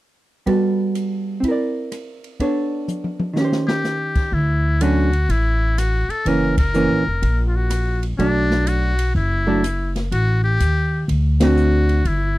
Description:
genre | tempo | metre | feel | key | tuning
jazz, small-group swing and bop | 124 BPM | 4/4 | swing 66% on 8ths | D major | A4 = 440 Hz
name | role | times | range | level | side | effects
vintage hollow-body jazz guitar | accompaniment | 0.5-12.0 s | D3 to D5 | -19 LUFS | right 2 dB | none
open jazz drum kit | drums | 0.5-12.2 s | crash cymbal, hi-hat, kick drum, ride cymbal, rim click, snare drum, toms | -24 LUFS | left 1 dB | none
trumpet with metal mute | melody | 3.7-12.4 s | D4 to A#4 | -23 LUFS | left 2 dB | none
upright bass | bass | 4.3-12.4 s | F1 to D#2 | -19 LUFS | equal | none
room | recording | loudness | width
little or no reverb | dry, close 1970s-style studio recording | -17 LUFS | side -17 dB against mid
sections
0.5-4.3 A section; 4.3-12.4 B section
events
drum fill 2.9-3.8; band accent 6.5, 11.3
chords
0.5 Gmaj9; 1.4 C9; 2.4 Bm9; 3.4 Eb6; 4.3 Dmaj7; 6.3 F#7; 8.2 Bm7; 10.1 D#dim/A; 11.1 D7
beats
| 0.46 0.95 1.43 1.91 | 2.40 2.88 3.36 3.84 | 4.33 4.81 5.29 5.78 | 6.26 6.74 7.22 7.71 | 8.19 8.67 9.15 9.64 | 10.12 10.60 11.08 11.57 | 12.05

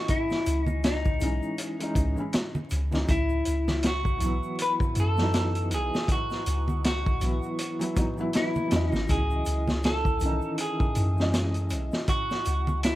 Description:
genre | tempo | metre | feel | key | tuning
trip hop | 80 BPM | 4/4 | swing 58% on 16ths | C# minor | A4 = 440 Hz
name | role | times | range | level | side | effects
clean electric guitar | melody | 0.0-13.0 s | D#4 to B4 | -30 LUFS | equal | tape echo
felt-muted upright piano | accompaniment | 0.0-13.0 s | D#3 to D#5 | -32 LUFS | equal | tremolo, tape echo
vintage drum kit | drums | 0.1-13.0 s | hi-hat, kick drum, snare drum | -28 LUFS | equal | none
egg shaker and congas | percussion | 0.1-13.0 s | none | -36 LUFS | right 1 dB | none
soft 808-style bass | bass | 0.5-13.0 s | G#1 to F#2 | -27 LUFS | equal | none
room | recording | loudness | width
small room ambience | vinyl crackle | -24 LUFS | side -15 dB against mid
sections
0.0-13.0 A section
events
none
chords
0.0 C#madd9; 3.1 Bsus4; 9.1 C#madd9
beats
| 0.09 0.83 1.58 2.33 | 3.08 3.83 4.58 5.33 | 6.08 6.83 7.58 8.34 | 9.09 9.84 10.59 11.34 | 12.09 12.84

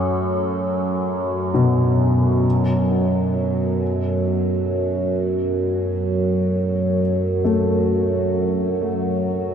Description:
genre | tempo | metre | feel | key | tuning
dark ambient drone | free time | none | none | F# minor | A4 = 440 Hz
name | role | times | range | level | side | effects
dark analog pad | sustained chords | 0.0-9.5 s | A3 to A4 | -35 LUFS | right 1 dB | lush chorus
overtone-sweeping drone | drone | 0.0-9.5 s | F#2 to F#3 | -20 LUFS | right 1 dB | chorus, built-in reverb
bronze singing bowl | texture | 0.0-2.5 s | G#5 | -40 LUFS | left 6 dB | none
dark concert grand piano | arpeggios | 1.5-9.5 s | B2 to A3 | -22 LUFS | left 2 dB | tape echo
room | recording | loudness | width
wet cathedral reverb, RT60 5.4 s | dark, warm production | -18 LUFS | side -8 dB against mid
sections
0.0-2.4 A section; 2.4-9.5 B section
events
none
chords
0.0 F#m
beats
free time

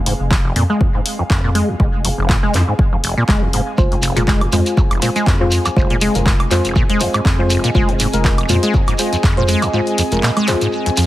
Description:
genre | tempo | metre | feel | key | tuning
acid house | 121 BPM | 4/4 | swing 55% on 16ths | F minor | A4 = 443 Hz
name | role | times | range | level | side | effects
saturated sub bass | bass | 0.0-9.6 s | F1 to F2 | -19 LUFS | equal | sidechain pumping
airy breathy pad | texture | 0.0-11.1 s | C4 to Ab5 | -26 LUFS | equal | chorus, sidechain pumping
deep acid bass | riff | 0.1-11.1 s | F1 to Ab3 | -19 LUFS | equal | tube saturation, analog chorus, vintage 12-bit sampler grit, sidechain pumping, digital delay
punchy analog drum machine | drums | 0.1-11.1 s | handclaps, hi-hat, woodblock | -22 LUFS | equal | none
electronic kick drum | drums | 0.3-9.3 s | none | -16 LUFS | equal | none
deep mellow chord stab | stabs | 3.8-10.6 s | Ab3 to C5 | -21 LUFS | left 1 dB | chorus, digital delay
shekere | percussion | 3.8-11.1 s | none | -25 LUFS | right 1 dB | none
room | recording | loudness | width
light reverb, digital ambience | heavily compressed radio sound, multiband compression | -13 LUFS | side -15 dB against mid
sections
0.0-11.1 A section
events
fade-in on analog synth pad 0.0-11.1; filter sweep on acid bass 0.0-11.1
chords
0.0 Fm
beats
0.31 0.81 1.30 | 1.80 2.29 2.79 3.29 | 3.78 4.28 4.77 5.27 | 5.77 6.26 6.76 7.25 | 7.75 8.24 8.74 9.24 | 9.73 10.23 10.72

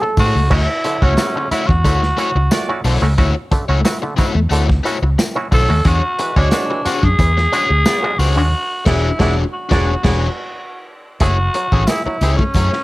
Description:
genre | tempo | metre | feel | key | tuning
funk | 90 BPM | 4/4 | straight | unclear | A4 = 435 Hz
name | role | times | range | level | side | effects
warm horn section | second line | 0.0-10.2 s | F#3 to E5 | -25 LUFS | right 2 dB | none
biting overdriven guitar | accompaniment | 0.0-12.8 s | A3 to C#5 | -23 LUFS | left 5 dB | none
mellow clav | stabs | 0.0-12.7 s | D3 to A4 | -24 LUFS | right 2 dB | auto-wah, plate reverb
raspy tenor saxophone | melody | 0.2-12.8 s | C#4 to A4 | -20 LUFS | equal | none
vintage muted fingered electric bass | bass | 0.2-12.7 s | E1 to A2 | -16 LUFS | equal | none
crunchy breakbeat drum kit | drums | 0.2-12.8 s | crash cymbal, hi-hat, kick drum, snare drum | -19 LUFS | equal | none
tambourine | percussion | 0.2-12.7 s | none | -33 LUFS | left 2 dB | none
room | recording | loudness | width
light reverb | none | -13 LUFS | side -19 dB against mid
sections
0.5-11.2 A section; 11.2-12.8 B section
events
band accent 8.5-11.2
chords
0.0 F#m9; 0.5 Dmaj9; 5.9 E13; 11.2 F#m9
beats
| 0.51 1.18 1.85 2.52 | 3.18 3.85 4.52 5.19 | 5.86 6.53 7.19 7.86 | 8.53 9.20 9.87 10.54 | 11.20 11.87 12.54

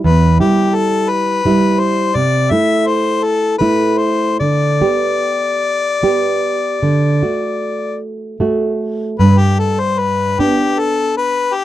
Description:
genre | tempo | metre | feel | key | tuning
romantic duo for harmonica and classical guitar | 48-58 BPM (dotted quarters) | 12/8 | rubato | G major | A4 = 438 Hz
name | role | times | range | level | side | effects
warm harmonica | melody | 0.0-11.6 s | G4 to E5 | -16 LUFS | left 4 dB | none
nylon-string guitar | accompaniment | 0.0-11.6 s | E2 to G4 | -15 LUFS | right 2 dB | none
room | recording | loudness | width
little or no reverb | dry, close 1970s-style studio recording | -13 LUFS | side -13 dB against mid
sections
0.0-9.2 A section; 9.2-11.6 B section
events
none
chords
0.1 Em; 2.2 Am/C; 4.4 G/D; 6.8 D; 9.2 G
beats
| 0.05 1.10 2.16 3.23 | 4.41 5.63 6.83 8.02 | 9.20 10.39 11.55

